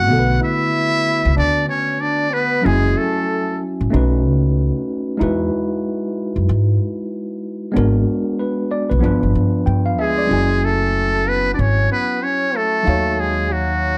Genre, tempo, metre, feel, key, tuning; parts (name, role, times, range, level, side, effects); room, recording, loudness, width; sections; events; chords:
hip hop, jazz-hop; 94 BPM; 4/4; swing 60% on 16ths; F# minor; A4 = 439 Hz
trumpet with metal mute; melody; 0.0-3.6, 10.0-14.0 s; F#4 to F#5; -22 LUFS; equal; plate reverb
clear trombone; second line; 0.0-3.6, 10.0-14.0 s; F#3 to F#4; -26 LUFS; equal; plate reverb
tine electric piano; accompaniment; 0.0-14.0 s; D3 to G#5; -23 LUFS; equal; overdrive, plate reverb
upright bass; bass; 0.0-14.0 s; F#1 to G#2; -20 LUFS; equal
moderate studio ambience, RT60 0.5 s; dark, warm production; -18 LUFS; mono
0.0-10.3 A section; 10.3-14.0 B section
0.1 Bm7; 2.7 F#m9; 3.9 B7; 5.2 Emaj9; 7.8 G#m7b5; 9.0 G7; 10.3 F#m9; 12.9 D#m9b5